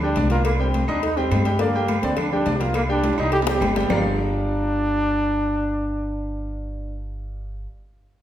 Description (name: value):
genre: latin, salsa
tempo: 209 BPM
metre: 4/4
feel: straight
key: G minor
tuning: A4 = 442 Hz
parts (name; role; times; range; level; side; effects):
- clear trombone; melody; 0.0-7.0 s; Bb3 to G4; -24 LUFS; equal; none
- clear concert grand piano; accompaniment; 0.0-7.7 s; D3 to Eb6; -27 LUFS; left 1 dB; none
- upright bass; bass; 0.0-7.7 s; G1 to G2; -26 LUFS; equal; none
- congas; percussion; 0.0-4.0 s; none; -29 LUFS; left 1 dB; none
- cowbell and bongos; percussion; 0.2-4.0 s; none; -30 LUFS; left 4 dB; none
- timbales and agogo bells; percussion; 0.2-4.0 s; none; -30 LUFS; right 3 dB; none
- claves; percussion; 0.5-4.0 s; none; -38 LUFS; right 2 dB; none
room: wet recital hall reverb, RT60 1.8 s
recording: recorded in a church or concert hall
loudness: -19 LUFS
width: side -11 dB against mid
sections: 0.0-3.9 A section; 3.9-6.2 B section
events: drum fill 3.0-3.9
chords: 0.5 Cm7; 1.6 Gm; 2.8 Cm7; 3.9 Gm7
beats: 0.17 | 0.46 0.74 1.03 1.32 | 1.60 1.89 2.18 2.47 | 2.75 3.04 3.33 3.61 | 3.90 4.19 4.47 4.76 | 5.05 5.33 5.62 5.91